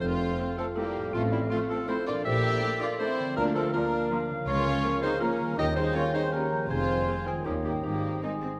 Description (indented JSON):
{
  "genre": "cinematic, playful, whimsical film cue",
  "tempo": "161 BPM",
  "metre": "3/4",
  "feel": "straight",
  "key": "F major",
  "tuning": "A4 = 438 Hz",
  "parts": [
    { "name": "dark chamber violin section", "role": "melody", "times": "0.0-8.6 s", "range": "G3 to G4", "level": "-41 LUFS", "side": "equal", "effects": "none" },
    { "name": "marimba with medium mallets", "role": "melody", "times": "0.0-8.6 s", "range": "C4 to C5", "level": "-37 LUFS", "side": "equal", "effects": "none" },
    { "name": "clear clarinet", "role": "second line", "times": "0.0-8.6 s", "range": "E4 to E5", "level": "-36 LUFS", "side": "equal", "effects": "none" },
    { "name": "mellow hollow large flute ensemble", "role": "second line", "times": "0.0-8.6 s", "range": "E5 to E6", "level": "-39 LUFS", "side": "equal", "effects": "none" },
    { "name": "warm oboe", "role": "second line", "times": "0.0-8.6 s", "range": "D5 to Ab5", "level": "-42 LUFS", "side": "equal", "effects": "none" },
    { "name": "warm studio violin section", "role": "second line", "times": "0.0-8.6 s", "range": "G3 to G4", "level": "-40 LUFS", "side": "equal", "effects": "none" },
    { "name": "dark bassoon", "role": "accompaniment", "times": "0.0-8.6 s", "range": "A3 to Db4", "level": "-39 LUFS", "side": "equal", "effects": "none" },
    { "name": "mellow French horn section", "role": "sustained chords", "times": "0.0-8.6 s", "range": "E3 to E4", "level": "-38 LUFS", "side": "equal", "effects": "none" },
    { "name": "concert harp", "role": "arpeggios", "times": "0.0-8.6 s", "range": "F2 to C5", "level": "-39 LUFS", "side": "equal", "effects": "none" },
    { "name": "mellow tuba", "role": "bass", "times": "0.0-8.2 s", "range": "F1 to Eb2", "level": "-41 LUFS", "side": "equal", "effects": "none" },
    { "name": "rich studio double bass section", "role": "bass", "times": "0.0-8.2 s", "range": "F1 to Eb2", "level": "-39 LUFS", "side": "equal", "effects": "none" },
    { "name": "warm studio cello section", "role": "bass", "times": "0.0-8.5 s", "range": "Db2 to Eb4", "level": "-39 LUFS", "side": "equal", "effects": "none" },
    { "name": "warm studio viola section", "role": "accompaniment", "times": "0.4-8.3 s", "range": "Eb3 to D4", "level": "-42 LUFS", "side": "equal", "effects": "none" }
  ],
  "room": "moderate scoring stage reverb, RT60 1.9 s",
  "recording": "none",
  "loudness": "-28 LUFS",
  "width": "mono",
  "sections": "0.0-8.6 A section",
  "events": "none",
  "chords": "0.0 F; 1.1 F/A; 2.3 Bbmaj7; 3.4 Bb/D; 4.5 Bbm/Db; 5.6 Eb7; 6.7 Fm; 7.5 Eb7; 7.8 Ab",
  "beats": "| 0.01 0.39 0.76 | 1.14 1.51 1.89 | 2.26 2.63 3.00 | 3.37 3.74 4.11 | 4.48 4.85 5.21 | 5.58 5.96 6.33 | 6.70 7.08 7.46 | 7.85 8.24"
}